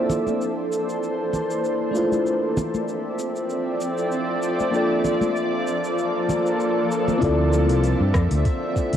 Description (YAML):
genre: sunset chillout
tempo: 97 BPM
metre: 4/4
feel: swing 55% on 16ths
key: D minor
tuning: A4 = 438 Hz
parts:
  - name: mellow FM electric piano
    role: accompaniment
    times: 0.0-9.0 s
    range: A3 to D5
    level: -26 LUFS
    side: equal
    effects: chorus, auto-pan, analog delay
  - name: shimmering ambient pad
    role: sustained chords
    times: 0.0-9.0 s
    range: D3 to E5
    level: -23 LUFS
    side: equal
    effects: chorus, built-in reverb
  - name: smooth R&B drum kit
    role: drums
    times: 0.1-9.0 s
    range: hi-hat, rim click, shaker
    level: -36 LUFS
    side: left 1 dB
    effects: small room ambience, cassette tape
  - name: congas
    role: percussion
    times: 0.1-7.2 s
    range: none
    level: -28 LUFS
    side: left 1 dB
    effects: none
  - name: fingered electric bass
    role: bass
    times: 7.2-9.0 s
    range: C2 to G2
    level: -20 LUFS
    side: equal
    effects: none
  - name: electronic kick drum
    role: drums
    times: 7.2-8.9 s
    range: none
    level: -23 LUFS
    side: equal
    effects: small room ambience, cassette tape
room: wet small room reverb, RT60 0.5 s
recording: home recording on cassette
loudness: -20 LUFS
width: side -10 dB against mid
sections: 0.0-7.2 A section; 7.2-9.0 B section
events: filter sweep on ambient pad 0.0-7.2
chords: 0.0 C13; 2.0 Dm9; 4.7 Bbmaj7; 7.2 Dm9